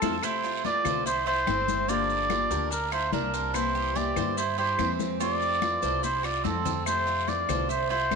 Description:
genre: latin, Cuban son and guajira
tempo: 145 BPM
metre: 4/4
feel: straight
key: F major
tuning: A4 = 440 Hz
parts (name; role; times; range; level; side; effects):
- trumpet with cup mute; melody; 0.0-8.2 s; A4 to D5; -27 LUFS; equal; none
- mandolin; second line; 0.0-8.2 s; C4 to G4; -35 LUFS; right 12 dB; none
- flamenco guitar; accompaniment; 0.0-8.2 s; C3 to G4; -35 LUFS; left 13 dB; none
- Cuban tres; arpeggios; 0.0-8.2 s; Bb3 to C5; -35 LUFS; right 10 dB; none
- upright bass; bass; 0.0-8.2 s; G1 to G2; -34 LUFS; right 1 dB; none
- claves; percussion; 0.0-8.2 s; none; -41 LUFS; left 12 dB; none
- congas; percussion; 0.0-8.2 s; none; -35 LUFS; left 13 dB; none
- guiro; percussion; 0.0-8.2 s; none; -42 LUFS; right 14 dB; none
- maracas; percussion; 0.0-8.2 s; none; -42 LUFS; left 14 dB; none
room: moderate echo chamber reverb, RT60 1.6 s, small room ambience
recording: 1960s-style stereo with parts hard left and right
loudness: -24 LUFS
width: side -5 dB against mid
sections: 0.2-8.2 A section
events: band accent 0.0; drum fill 6.5-6.9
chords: 0.2 Fmaj7; 1.9 Gm7; 3.5 C7; 5.2 Fmaj7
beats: | 0.23 0.64 1.06 1.47 | 1.89 2.30 2.72 3.13 | 3.55 3.96 4.38 4.79 | 5.21 5.62 6.04 6.45 | 6.87 7.28 7.70 8.11

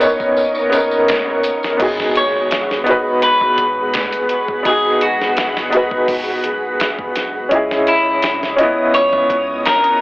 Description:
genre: trip hop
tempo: 84 BPM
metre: 4/4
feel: straight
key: G# minor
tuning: A4 = 442 Hz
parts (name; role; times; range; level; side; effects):
- warm upright piano; accompaniment; 0.0-10.0 s; B3 to D#5; -16 LUFS; equal; tremolo, tape echo
- string machine, cellos; sustained chords; 0.0-10.0 s; G#4 to D#6; -24 LUFS; equal; ensemble chorus, vintage 12-bit sampler grit
- round analog bass; bass; 0.0-9.8 s; F#1 to D#2; -41 LUFS; equal; none
- dusty soul sampler-style drum kit; drums; 0.0-10.0 s; crash cymbal, hi-hat, kick drum, snare drum; -22 LUFS; equal; soft clipping on snare
- tambourine; percussion; 0.0-1.8 s; none; -32 LUFS; left 1 dB; none
- sub drop; sound effects; 1.8-4.7 s; none; -42 LUFS; equal; none
- clean electric guitar; melody; 2.2-10.0 s; E4 to C#5; -17 LUFS; equal; dub echo
room: light reverb, digital ambience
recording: blown-out, overdriven recording, vinyl crackle, overdrive, telephone sound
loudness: -13 LUFS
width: side -20 dB against mid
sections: 0.0-1.8 A section; 1.8-10.0 B section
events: impact 1.8-4.7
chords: 0.0 Bmaj9; 1.8 G#m7; 7.5 C#madd9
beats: 0.37 1.08 | 1.79 2.51 3.22 3.94 | 4.65 5.37 6.08 6.79 | 7.51 8.22 8.94 9.65

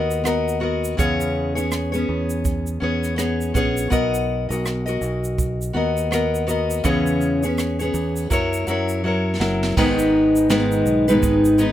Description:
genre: acoustic pop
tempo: 82 BPM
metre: 4/4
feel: swing 60% on 16ths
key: G# minor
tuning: A4 = 440 Hz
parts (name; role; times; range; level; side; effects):
- fingerpicked steel-string acoustic guitar; accompaniment; 0.0-11.7 s; G#2 to D#5; -19 LUFS; left 1 dB; none
- fingered electric bass; bass; 0.0-11.7 s; F#1 to F#2; -25 LUFS; right 1 dB; none
- jazz brush drum kit; drums; 0.1-11.7 s; crash cymbal, kick drum, rim click, shaker, snare drum; -26 LUFS; right 2 dB; none
room: little or no reverb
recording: none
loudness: -18 LUFS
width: side -12 dB against mid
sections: 0.0-9.8 A section; 9.8-11.7 B section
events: drum fill 9.0-9.8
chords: 0.0 Bmaj7; 1.0 E6; 3.9 Bmaj7; 6.8 E6; 8.3 F#7; 9.8 G#m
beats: 0.26 | 0.99 1.72 2.45 3.18 | 3.92 4.65 5.38 6.11 | 6.84 7.57 8.30 9.04 | 9.77 10.50 11.23

